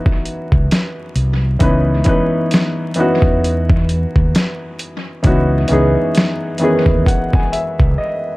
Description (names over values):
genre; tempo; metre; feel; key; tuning
lo-fi hip hop; 66 BPM; 4/4; swing 61% on 16ths; C# minor; A4 = 439 Hz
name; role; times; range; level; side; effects
warm upright piano; accompaniment; 0.0-8.4 s; D#3 to G#5; -17 LUFS; equal; cassette tape, low-pass filter
dusty soul sampler-style drum kit; drums; 0.1-8.0 s; hi-hat, kick drum, snare drum; -15 LUFS; equal; overdrive, dub echo
mellow fretless electric bass; bass; 0.5-8.0 s; B#1 to E2; -16 LUFS; equal; none
room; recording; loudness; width
light reverb; echo-heavy mix, vinyl crackle; -13 LUFS; side -20 dB against mid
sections
0.0-8.4 A section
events
upright piano fill 6.1-8.4; break 8.0-8.4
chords
0.0 C#m9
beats
0.69 | 1.60 2.51 3.42 4.33 | 5.24 6.15 7.06 7.97